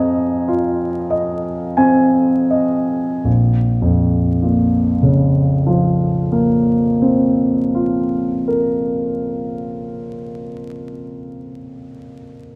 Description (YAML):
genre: classical, impressionist solo piano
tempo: 39-52 BPM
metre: 5/4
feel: rubato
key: Bb minor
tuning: A4 = 439 Hz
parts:
  - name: warm concert grand piano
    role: solo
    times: 0.0-12.6 s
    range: Bb1 to Bb5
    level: -18 LUFS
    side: equal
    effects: none
room: moderate scoring stage reverb, RT60 1.7 s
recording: dark, warm production, vinyl crackle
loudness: -17 LUFS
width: mono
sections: 0.0-3.2 A section; 3.2-10.5 B section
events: slowing down 0.0-3.2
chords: 0.0 Fm7; 3.2 Bbmadd9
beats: 0.49 1.77 | 3.25 4.68 6.10 7.56 9.02